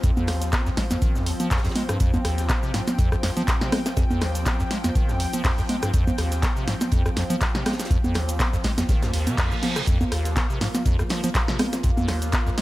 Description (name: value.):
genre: acid house.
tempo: 122 BPM.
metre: 4/4.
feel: swing 55% on 16ths.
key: F minor.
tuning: A4 = 441 Hz.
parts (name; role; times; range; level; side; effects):
lush unison pad; sustained chords; 0.0-12.6 s; F3 to G5; -31 LUFS; equal; chorus, sidechain pumping.
acid bass, square; riff; 0.0-12.6 s; Eb2 to Ab3; -26 LUFS; equal; tube saturation, wide subtle chorus.
crisp fusion drum kit; drums; 0.0-12.6 s; hi-hat, snare drum; -40 LUFS; right 2 dB; none.
electronic kick drum; drums; 0.0-12.4 s; none; -24 LUFS; equal; none.
punchy analog drum machine; drums; 0.0-12.6 s; congas, handclaps, hi-hat, rim click, shaker, snare drum; -26 LUFS; equal; none.
kalimba; melody; 3.7-4.7, 11.6-11.8 s; Ab4; -32 LUFS; equal; analog delay.
reverse cymbal; sound effects; 9.1-9.9 s; none; -32 LUFS; right 4 dB; none.
room: light reverb, studio reverb.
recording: none.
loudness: -20 LUFS.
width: side -17 dB against mid.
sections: 0.0-12.6 A section.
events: reverse cymbal 9.1-9.9.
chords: 0.0 F5.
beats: | 0.04 0.53 1.02 1.51 | 2.00 2.50 2.99 3.48 | 3.97 4.46 4.95 5.45 | 5.94 6.43 6.92 7.41 | 7.91 8.40 8.89 9.38 | 9.87 10.36 10.86 11.35 | 11.84 12.33.